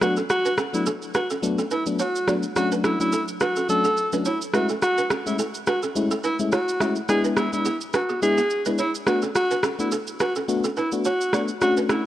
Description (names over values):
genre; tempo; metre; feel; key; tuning
afrobeats; 106 BPM; 4/4; swing 55% on 16ths; unclear; A4 = 435 Hz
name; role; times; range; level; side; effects
warm alto saxophone; melody; 0.0-12.0 s; E4 to A4; -24 LUFS; equal; ping-pong delay
FM electric piano; accompaniment; 0.0-12.0 s; F#3 to F#4; -26 LUFS; left 3 dB; chorus
balafon; riff; 0.0-12.0 s; B3 to E5; -29 LUFS; right 4 dB; none
electronic rim click and shaker; drums; 0.0-12.0 s; none; -28 LUFS; right 1 dB; none
room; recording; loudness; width
moderate lush hall reverb, RT60 2.6 s; worn, warbling old tape, cassette tape, warbly pitch drift; -20 LUFS; side -13 dB against mid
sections
0.0-12.1 A section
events
none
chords
0.0 Bm7; 4.5 Amaj7; 7.1 E7; 9.1 Bm7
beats
| 0.30 0.86 1.43 1.99 | 2.56 3.13 3.69 4.26 | 4.82 5.39 5.96 6.52 | 7.09 7.65 8.22 8.79 | 9.35 9.92 10.48 11.05 | 11.62